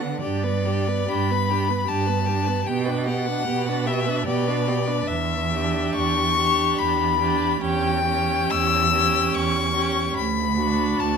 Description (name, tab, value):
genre	classical, slow romantic movement for string quartet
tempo	65-78 BPM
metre	3/4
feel	rubato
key	unclear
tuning	A4 = 440 Hz
part	rich violin	melody	0.0-11.2 s	D5 to E6	-23 LUFS	left 9 dB	none
part	warm violin	second line	0.0-11.2 s	D4 to B4	-29 LUFS	right 1 dB	none
part	warm viola	accompaniment	0.0-11.2 s	B3 to D4	-28 LUFS	right 6 dB	none
part	warm cello	bass	0.0-11.2 s	D2 to D3	-25 LUFS	right 5 dB	none
room	moderate recital hall reverb, RT60 1.4 s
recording	close, detailed microphones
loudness	-20 LUFS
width	side -6 dB against mid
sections	0.0-11.2 A section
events	none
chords	0.2 G; 2.7 G/B; 5.1 Em7; 7.6 C#dim/E; 10.2 Bm/D